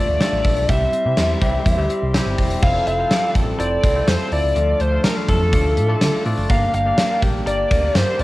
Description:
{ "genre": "1980s-style pop", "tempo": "124 BPM", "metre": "4/4", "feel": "straight", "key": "F major", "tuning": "A4 = 437 Hz", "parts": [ { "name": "biting lead guitar", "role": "melody", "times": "0.0-8.2 s", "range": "A4 to F5", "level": "-21 LUFS", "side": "left 1 dB", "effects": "overdrive, cassette tape" }, { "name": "barky tine electric piano", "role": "accompaniment", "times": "0.0-8.2 s", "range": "G3 to F5", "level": "-26 LUFS", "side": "left 2 dB", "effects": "cassette tape" }, { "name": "chorused pulse-width pad", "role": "sustained chords", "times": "0.0-8.2 s", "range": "F4 to E6", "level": "-31 LUFS", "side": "right 1 dB", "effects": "cassette tape, plate reverb" }, { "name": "direct-recorded clean electric guitar", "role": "riff", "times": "0.0-8.2 s", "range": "F3 to A4", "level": "-29 LUFS", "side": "right 3 dB", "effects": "wide subtle chorus, cassette tape" }, { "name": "smooth gliding synth bass", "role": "bass", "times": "0.1-8.2 s", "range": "E1 to D3", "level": "-22 LUFS", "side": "equal", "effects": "none" }, { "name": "gated 80s drum kit", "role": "drums", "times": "0.2-8.2 s", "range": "crash cymbal, hi-hat, kick drum, snare drum, tambourine", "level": "-20 LUFS", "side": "equal", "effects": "cassette tape" } ], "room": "moderate small room ambience, RT60 0.5 s", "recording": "home recording on cassette", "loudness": "-16 LUFS", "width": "side -18 dB against mid", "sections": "0.0-2.6 A section; 2.6-8.2 B section", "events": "none", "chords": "0.0 Dm; 0.7 C; 2.6 Fmaj7; 4.6 Dm; 6.5 Gm" }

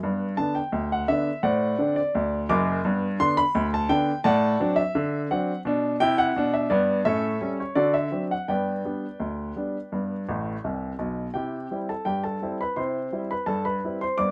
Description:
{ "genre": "ragtime piano", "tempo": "85 BPM", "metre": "2/4", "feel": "straight", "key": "G major", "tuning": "A4 = 439 Hz", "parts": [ { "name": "clear upright piano", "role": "solo", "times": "0.0-14.3 s", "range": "F#1 to D6", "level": "-25 LUFS", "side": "equal", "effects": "none" } ], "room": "moderate small room reverb, RT60 0.5 s", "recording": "none", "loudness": "-25 LUFS", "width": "mono", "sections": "0.0-11.3 A section; 11.3-14.3 B section", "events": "upright piano fill 10.3-11.3", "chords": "0.0 G; 1.5 D7/A; 2.9 G; 4.3 D7/A; 5.7 G/B; 7.1 A7; 7.8 D7; 8.5 G; 11.3 C" }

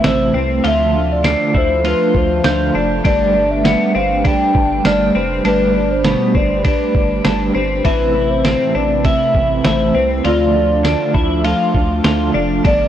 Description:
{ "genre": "dream pop", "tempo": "100 BPM", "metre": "4/4", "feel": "straight", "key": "D dorian", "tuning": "A4 = 441 Hz", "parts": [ { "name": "hollow clarinet-like synth lead", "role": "melody", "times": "0.0-12.9 s", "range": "B4 to G5", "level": "-18 LUFS", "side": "left 1 dB", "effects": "chorus, analog delay" }, { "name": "mellow electric guitar", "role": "accompaniment", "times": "0.0-12.9 s", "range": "A2 to B4", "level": "-22 LUFS", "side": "right 5 dB", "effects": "tremolo, wide subtle chorus" }, { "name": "hollow soft pad", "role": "sustained chords", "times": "0.0-12.9 s", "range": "C3 to B4", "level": "-21 LUFS", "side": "right 2 dB", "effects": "chorus" }, { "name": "twelve-string electric guitar", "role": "arpeggios", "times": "0.0-12.9 s", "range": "B2 to F4", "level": "-20 LUFS", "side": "left 4 dB", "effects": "analog chorus, analog delay" }, { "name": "saturated sub bass", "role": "bass", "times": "0.0-12.9 s", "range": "F1 to D2", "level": "-22 LUFS", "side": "equal", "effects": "none" }, { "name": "lo-fi sampler-style drum kit", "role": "drums", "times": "0.0-12.8 s", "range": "kick drum, ride cymbal, snare drum, tambourine", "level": "-19 LUFS", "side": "equal", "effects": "none" }, { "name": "synth chime", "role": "texture", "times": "1.3-11.5 s", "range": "F4 to C7", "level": "-27 LUFS", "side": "left 3 dB", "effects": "ensemble chorus, phaser, analog delay" } ], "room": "little or no reverb", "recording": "dry, gritty hardware recording", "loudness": "-13 LUFS", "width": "side -10 dB against mid", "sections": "0.0-12.9 A section", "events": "none", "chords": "0.0 Amadd9; 0.6 Dm; 3.0 Gadd9; 7.8 Amadd9; 10.2 Dm" }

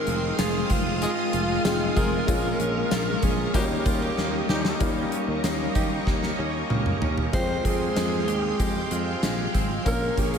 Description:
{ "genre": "1980s-style pop", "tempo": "95 BPM", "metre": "4/4", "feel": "straight", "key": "F minor", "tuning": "A4 = 440 Hz", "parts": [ { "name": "raspy alto saxophone", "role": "melody", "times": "0.0-10.4 s", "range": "F4 to C5", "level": "-30 LUFS", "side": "right 2 dB", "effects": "tape echo" }, { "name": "clear baby grand piano", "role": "accompaniment", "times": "0.0-10.4 s", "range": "G3 to G5", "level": "-31 LUFS", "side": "left 4 dB", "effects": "none" }, { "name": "string machine, full ensemble", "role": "sustained chords", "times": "0.0-10.4 s", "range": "Ab3 to Eb6", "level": "-31 LUFS", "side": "equal", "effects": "ensemble chorus" }, { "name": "direct-recorded clean electric guitar", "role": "riff", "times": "0.0-10.4 s", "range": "Eb3 to G4", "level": "-32 LUFS", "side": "right 4 dB", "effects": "wide subtle chorus, tape echo" }, { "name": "sustaining fretless electric bass", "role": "bass", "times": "0.1-10.4 s", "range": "F1 to Eb3", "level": "-30 LUFS", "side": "equal", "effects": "wide subtle chorus" }, { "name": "gated 80s drum kit", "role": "drums", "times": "0.1-10.4 s", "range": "hi-hat, kick drum, snare drum, tambourine, toms", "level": "-27 LUFS", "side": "equal", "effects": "none" }, { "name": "warm horn section", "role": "stabs", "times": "1.0-4.8 s", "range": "G3 to Ab4", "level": "-36 LUFS", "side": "left 2 dB", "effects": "none" } ], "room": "wet huge ambient reverb, RT60 8.0 s", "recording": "dreamy mix soaked in reverb", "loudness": "-22 LUFS", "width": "side -7 dB against mid", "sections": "0.0-4.8 A section; 4.8-7.3 B section; 7.3-10.4 C section", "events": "drum fill 4.2-4.8, 6.1-7.3", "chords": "0.0 Fm7; 2.3 Bbm7; 3.5 Eb7; 7.3 Fmadd9; 9.9 Bbm" }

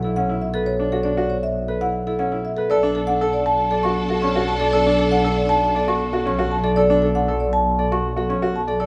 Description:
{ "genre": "classical, minimalist pattern music", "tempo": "118 BPM", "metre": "4/4", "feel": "straight", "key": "unclear", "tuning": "A4 = 435 Hz", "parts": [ { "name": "marimba with medium mallets", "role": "melody", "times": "0.0-8.9 s", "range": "A4 to C#6", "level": "-23 LUFS", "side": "equal", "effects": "none" }, { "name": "clear grand piano", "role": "arpeggios", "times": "0.0-8.9 s", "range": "C#4 to D5", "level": "-26 LUFS", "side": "equal", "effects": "none" }, { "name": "rich studio double bass section", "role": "bass", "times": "0.0-8.9 s", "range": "B1", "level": "-27 LUFS", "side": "equal", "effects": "none" }, { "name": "clear studio string section", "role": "sustained chords", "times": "2.7-6.6 s", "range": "D4 to A4", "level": "-30 LUFS", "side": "equal", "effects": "none" } ], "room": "wet large studio reverb, RT60 1.2 s", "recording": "none", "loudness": "-20 LUFS", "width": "mono", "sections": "0.0-8.9 A section", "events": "none", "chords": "0.0 Bm9; 2.7 D/B" }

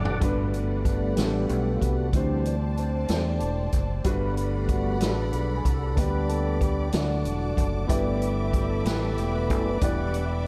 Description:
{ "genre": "slow gospel", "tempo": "62 BPM (dotted quarters)", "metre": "6/8", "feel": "straight", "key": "G major", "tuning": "A4 = 439 Hz", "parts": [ { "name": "warm upright piano", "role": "accompaniment", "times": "0.0-10.5 s", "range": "G2 to D5", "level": "-34 LUFS", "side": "equal", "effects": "analog chorus" }, { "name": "tonewheel organ", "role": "sustained chords", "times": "0.0-10.5 s", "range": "E3 to D6", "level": "-32 LUFS", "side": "equal", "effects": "slow rotary speaker" }, { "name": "fingered electric bass", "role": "bass", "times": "0.0-10.5 s", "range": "E1 to E2", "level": "-30 LUFS", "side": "equal", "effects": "none" }, { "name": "swinging big-band drum kit", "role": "drums", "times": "0.1-10.3 s", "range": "hi-hat, kick drum, snare drum, toms", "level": "-31 LUFS", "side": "equal", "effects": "none" }, { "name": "warm symphonic string section", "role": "sustained chords", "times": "0.2-10.5 s", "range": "B4 to D6", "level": "-40 LUFS", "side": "equal", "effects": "none" } ], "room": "moderate plate reverb, RT60 3.6 s", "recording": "dreamy mix soaked in reverb", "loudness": "-26 LUFS", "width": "mono", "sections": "0.2-10.5 A section", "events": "drum fill 0.0; tonewheel organ solo 0.2-10.5", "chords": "0.2 Gmaj7; 2.1 D7sus4; 4.1 Gmaj7; 6.0 G/D; 6.9 D; 7.9 G6; 9.8 Em7" }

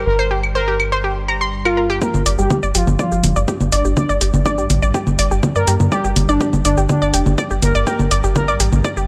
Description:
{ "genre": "melodic techno", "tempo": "123 BPM", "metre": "4/4", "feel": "straight", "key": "G minor", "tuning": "A4 = 439 Hz", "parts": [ { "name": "tight sequencer bass", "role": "bass", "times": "0.0-9.1 s", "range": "F1 to G2", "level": "-21 LUFS", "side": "equal", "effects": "sidechain pumping" }, { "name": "bowed-like drone", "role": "drone", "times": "0.0-9.1 s", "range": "G2 to G3", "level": "-32 LUFS", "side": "equal", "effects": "built-in reverb, sidechain pumping" }, { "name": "analog synth brass", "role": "melody", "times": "0.1-8.6 s", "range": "D4 to D5", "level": "-24 LUFS", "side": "equal", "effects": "chorus, sidechain pumping, tape echo" }, { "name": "analog pluck", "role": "arpeggios", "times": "0.2-9.0 s", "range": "G4 to C6", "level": "-24 LUFS", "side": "equal", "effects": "chorus, sidechain pumping, tape echo" }, { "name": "electronic claves, shaker, congas and hi-hat", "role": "drums", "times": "0.4-9.1 s", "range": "none", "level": "-22 LUFS", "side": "equal", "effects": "none" }, { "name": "airy dreamy lead", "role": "second line", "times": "2.0-8.6 s", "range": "D3 to D4", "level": "-28 LUFS", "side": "equal", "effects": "chorus, sidechain pumping, tape echo" }, { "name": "electronic kick drum", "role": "drums", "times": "2.0-8.9 s", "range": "none", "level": "-26 LUFS", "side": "equal", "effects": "high-pass filter on kick, high-pass filter on room" } ], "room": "light reverb, digital ambience", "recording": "dry, gritty hardware recording", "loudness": "-17 LUFS", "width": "mono", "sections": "0.0-2.0 A section; 2.0-9.1 B section", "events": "build-up 2.0-9.1; filter sweep on synth pluck 2.0-9.1; filter sweep on analog polysynth 2.0-9.1; filter sweep on digital synth lead 2.0-9.1", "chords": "0.0 Gmadd11; 2.0 Gm" }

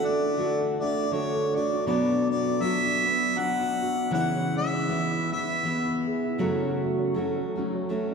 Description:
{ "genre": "acoustic folk duo or small band", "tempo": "80 BPM", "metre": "3/4", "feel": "swing 57% on 8ths", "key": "unclear", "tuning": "A4 = 439 Hz", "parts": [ { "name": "warm harmonica", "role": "melody", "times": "0.0-6.0 s", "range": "C#5 to F#5", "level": "-28 LUFS", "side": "left 1 dB", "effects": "none" }, { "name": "picked steel-string acoustic guitar", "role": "accompaniment", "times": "0.0-8.1 s", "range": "F#2 to F#4", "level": "-28 LUFS", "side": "equal", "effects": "none" }, { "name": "warm upright piano", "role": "arpeggios", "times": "0.0-8.1 s", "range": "E3 to A4", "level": "-30 LUFS", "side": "right 1 dB", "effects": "none" } ], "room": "wet cathedral reverb, RT60 4.7 s", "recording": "recorded in a church or concert hall", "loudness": "-24 LUFS", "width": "side -5 dB against mid", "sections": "0.0-8.1 A section", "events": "none", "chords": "0.0 D; 1.9 Bm; 4.1 C#m; 4.9 E; 6.4 F#m" }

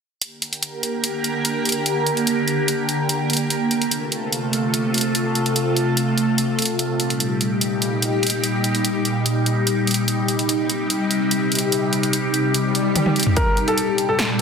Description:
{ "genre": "heavy wobble dubstep", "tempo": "146 BPM", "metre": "4/4", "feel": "half-time", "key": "G minor", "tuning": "A4 = 442 Hz", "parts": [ { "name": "evolving wavetable pad", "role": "sustained chords", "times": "0.7-14.4 s", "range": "Bb2 to Bb4", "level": "-20 LUFS", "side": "equal", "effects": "ensemble chorus, built-in reverb, phaser, sidechain pumping" }, { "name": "big-room dance drum kit", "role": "drums", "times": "0.2-14.4 s", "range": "hi-hat, snare drum, toms", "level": "-22 LUFS", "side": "equal", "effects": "studio reverb" }, { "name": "swell", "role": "sound effects", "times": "12.7-13.4 s", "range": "none", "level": "-27 LUFS", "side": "equal", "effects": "none" }, { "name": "warm baby grand piano", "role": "melody", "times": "13.4-14.4 s", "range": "A4 to Bb4", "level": "-21 LUFS", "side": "left 2 dB", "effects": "none" }, { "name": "electronic kick drum", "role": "drums", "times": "13.4-13.5 s", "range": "none", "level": "-21 LUFS", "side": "equal", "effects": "studio reverb" } ], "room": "moderate plate reverb, RT60 1.3 s", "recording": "dense, heavily limited modern master", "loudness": "-18 LUFS", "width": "side -6 dB against mid", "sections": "0.2-14.4 A section", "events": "swell 12.7-13.4; drum fill 13.0-13.4", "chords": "0.2 Gm; 3.5 F; 6.8 Eb; 10.1 Cm; 13.4 Gm" }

